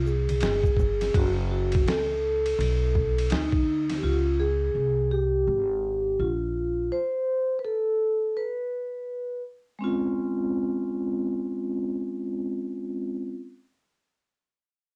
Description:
hip hop, jazz-hop; 83 BPM; 4/4; swing 63% on 16ths; A4 = 438 Hz
vibraphone with soft mallets; accompaniment; 0.0-13.4 s; Ab3 to C5; -29 LUFS; equal; cassette tape
upright bass; bass; 0.0-6.9 s; Gb1 to D2; -30 LUFS; equal
egg shaker and congas; percussion; 0.1-1.1 s; -39 LUFS; equal
trip hop sampler-style drum kit; drums; 0.3-4.0 s; hi-hat, kick drum, ride cymbal, snare drum; -31 LUFS; equal; cassette tape
little or no reverb; home recording on cassette; -27 LUFS; mono
0.0-9.8 A section; 9.8-12.7 B section
vibraphone solo 0.0-9.8
0.0 Abmaj7; 1.1 Gbm; 2.6 B7; 4.0 Dbmaj7#11; 6.9 N.C.; 9.8 Dbmaj7/Ab

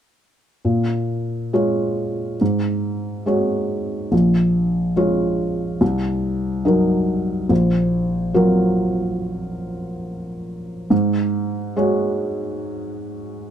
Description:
classical; 70 BPM; 4/4; rubato; Bb minor; A4 = 440 Hz
felt-muted upright piano; accompaniment; 0.6-13.5 s; Bb1 to Db5; -18 LUFS; equal
moderate studio reverb, RT60 0.6 s; -18 LUFS; side -9 dB against mid
0.7-13.5 A section
0.7 Bbm7; 2.4 Ab7sus4; 4.1 Bbm7; 5.8 Cm7b5; 7.5 Gbmaj7/Bb; 10.9 Ab7sus4

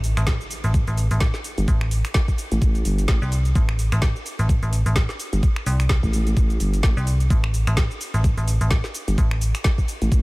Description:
bass house; 128 BPM; 4/4; swing 57% on 16ths; A minor; A4 = 435 Hz
metallic FM bass; bass; 0.0-9.5 s; A1 to C2; -20 LUFS; equal; sidechain pumping
garage drum kit; drums; 0.0-10.2 s; finger snaps, hi-hat, shaker, snare drum; -29 LUFS; equal; overdrive
impact; sound effects; 0.0-0.7 s; -40 LUFS; equal
electronic kick drum; drums; 0.3-10.2 s; -19 LUFS; equal; overdrive
vowel-sweep wobble bass; bass; 1.6-10.2 s; G1 to A1; -20 LUFS; equal; chorus, tube saturation, sidechain pumping
little or no reverb; -18 LUFS; side -23 dB against mid
0.0-10.2 A section
impact 0.0-0.7

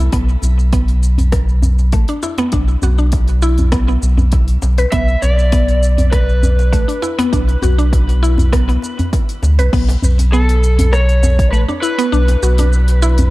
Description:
organic downtempo; 100 BPM; 4/4; straight; B minor; A4 = 440 Hz
mallet-like synth pluck; arpeggios; 0.0-13.3 s; A3 to B4; -21 LUFS; equal; chorus, tape echo, shimmer reverb
warm sub bass; bass; 0.0-13.3 s; A1 to D2; -12 LUFS; equal; sidechain pumping
electronic kick drum; drums; 0.1-11.5 s; -17 LUFS; equal; overdrive
organic electronic drum kit; drums; 0.1-13.3 s; crash cymbal, hi-hat, rim click, shaker; -27 LUFS; left 1 dB; overdrive, dub echo
djembe; percussion; 0.3-13.3 s; -21 LUFS; equal
overdriven slide guitar; melody; 4.9-13.3 s; A4 to E5; -22 LUFS; equal; tape echo, shimmer reverb
digital ambience; echo-heavy mix; -11 LUFS; side -18 dB against mid
0.0-9.7 A section; 9.7-13.3 B section
0.0 Bm

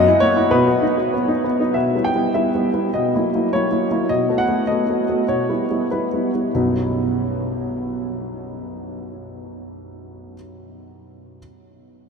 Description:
classical-period piano sonatina; 91-105 BPM; 2/4; rubato; B major; A4 = 440 Hz
warm grand piano; solo; 0.0-11.4 s; B1 to G5; -18 LUFS; equal
wet huge ambient reverb, RT60 8.6 s; in a vast, echoing space; -17 LUFS; side -5 dB against mid
0.0-1.8 A section; 1.8-6.6 B section; 6.6-9.2 C section
slowing down 3.5-6.6
0.0 F#7 (rootless); 0.5 B; 1.8 Em/B; 2.9 F#7/B; 4.1 B7; 5.3 Em/B; 6.6 B

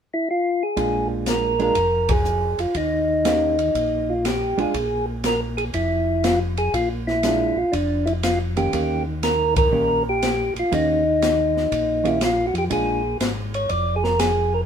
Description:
soul jazz organ trio; 121 BPM; 4/4; swing 68% on 8ths; Bb mixolydian; A4 = 440 Hz
percussive tonewheel organ; melody; 0.1-14.6 s; D4 to D5; -21 LUFS; equal; slow rotary speaker
hollow-body jazz guitar; accompaniment; 0.8-13.0 s; Eb3 to G4; -25 LUFS; right 3 dB
tonewheel organ; bass; 0.8-14.7 s; F1 to F2; -26 LUFS; equal; chorus vibrato, stopped rotary speaker
open jazz drum kit; drums; 0.8-14.4 s; hi-hat, kick drum, ride cymbal, snare drum; -27 LUFS; left 1 dB
moderate studio reverb, RT60 0.8 s; minimal, uncompressed stereo recording; -19 LUFS; side -8 dB against mid
0.8-14.7 A section
band accent 2.0, 9.5
0.0 N.C.; 0.8 Bb7; 2.8 Eb7; 4.7 Bb7(no3); 8.7 Eb7; 12.7 Bb7

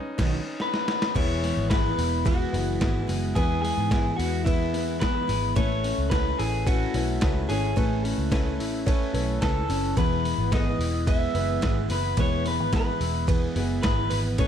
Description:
jangly indie pop; 109 BPM; 4/4; straight; E major; A4 = 439 Hz
electric guitar through a small old amp; melody; 0.0-14.5 s; E4 to E5; -29 LUFS; left 2 dB; slapback echo
clear upright piano; accompaniment; 0.0-14.5 s; B3 to C#5; -34 LUFS; left 2 dB; plate reverb
picked steel-string acoustic guitar; accompaniment; 0.2-14.5 s; D#3 to B4; -33 LUFS; right 10 dB; plate reverb
vintage muted picked electric bass; bass; 0.2-14.5 s; E1 to G#2; -28 LUFS; equal
boom bap sampler-style drum kit; drums; 0.2-14.5 s; crash cymbal, hi-hat, kick drum, ride cymbal, snare drum; -27 LUFS; equal
twelve-string electric guitar; arpeggios; 1.2-14.5 s; E3 to B4; -32 LUFS; left 4 dB; lush chorus, slapback echo, plate reverb
light reverb; dark, warm production; -22 LUFS; side -9 dB against mid
0.0-1.2 A section; 1.2-14.5 B section
band accent 0.0-1.2; drum fill 0.6-1.2
0.0 Badd9; 1.2 E; 5.6 Aadd9; 10.0 E

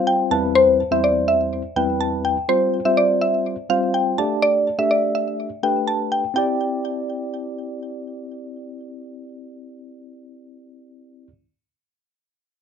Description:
pop; 124 BPM; 4/4; straight; C major; A4 = 440 Hz
mallet-like synth pluck; melody; 0.0-7.8 s; C5 to A5; -19 LUFS; equal; chorus
tine electric piano; accompaniment; 0.0-11.3 s; E2 to E5; -24 LUFS; left 1 dB; medium stereo tremolo
moderate small room ambience, RT60 0.5 s; rough home demo mix, nothing above 11.0 kHz; -18 LUFS; side -7 dB against mid
0.0-6.4 A section; 6.4-10.2 B section
0.3 Cmaj7/E; 2.5 Fsus2; 4.2 Gsus2; 6.4 Cadd9

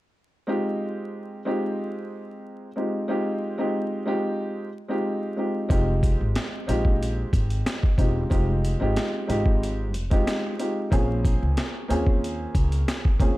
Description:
hip hop, boom-bap hip-hop; 92 BPM; 4/4; swing 54% on 16ths; A4 = 440 Hz
dark upright piano; accompaniment; 0.5-13.4 s; Ab3 to Ab4; -26 LUFS; equal; high-pass filter, low-pass filter
upright bass; bass; 5.7-13.4 s; E1 to Eb2; -25 LUFS; equal
boom bap sampler-style drum kit; drums; 5.7-13.4 s; hi-hat, kick drum, snare drum; -23 LUFS; equal
little or no reverb; vinyl crackle; -22 LUFS; side -18 dB against mid
0.5-5.7 A section; 5.7-13.4 B section
0.5 Fm9; 10.9 Bbm9

